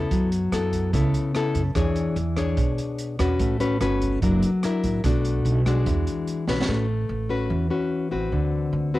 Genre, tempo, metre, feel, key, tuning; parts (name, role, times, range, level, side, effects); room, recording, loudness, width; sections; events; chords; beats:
bossa nova; 146 BPM; 4/4; straight; A major; A4 = 440 Hz
nylon-string guitar; accompaniment; 0.0-9.0 s; B2 to C#5; -23 LUFS; left 2 dB; cassette tape
upright bass; bass; 0.0-9.0 s; F#1 to F#2; -26 LUFS; right 2 dB; tube saturation
open jazz drum kit; drums; 0.1-6.7 s; hi-hat, kick drum, rim click, snare drum; -29 LUFS; right 2 dB; cassette tape
light reverb, small room ambience; home recording on cassette; -21 LUFS; side -16 dB against mid
0.0-6.7 A section; 6.7-9.0 B section
drum fill 6.5
0.1 F#m7; 1.8 E13; 3.4 A69; 4.2 F#7alt; 5.0 Bm7; 5.9 E9; 6.7 A69; 8.3 D6
| 0.11 0.52 0.93 1.34 | 1.75 2.17 2.58 2.99 | 3.40 3.81 4.22 4.63 | 5.04 5.45 5.86 6.27 | 6.68 7.09 7.50 7.91 | 8.32 8.73